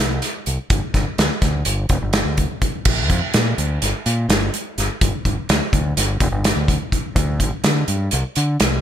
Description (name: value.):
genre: math rock and midwest emo.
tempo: 251 BPM (eighths).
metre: 9/8.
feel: straight.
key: G minor.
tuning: A4 = 440 Hz.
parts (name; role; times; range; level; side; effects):
growling fingered electric bass; bass; 0.0-8.8 s; F1 to D3; -20 LUFS; equal; overdrive.
loose indie drum kit; drums; 0.2-8.7 s; crash cymbal, hi-hat, kick drum, snare drum; -19 LUFS; equal; gated reverb.
room: little or no reverb.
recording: bright 1980s-style digital production.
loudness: -17 LUFS.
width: side -10 dB against mid.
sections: 0.0-8.8 A section.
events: none.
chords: none.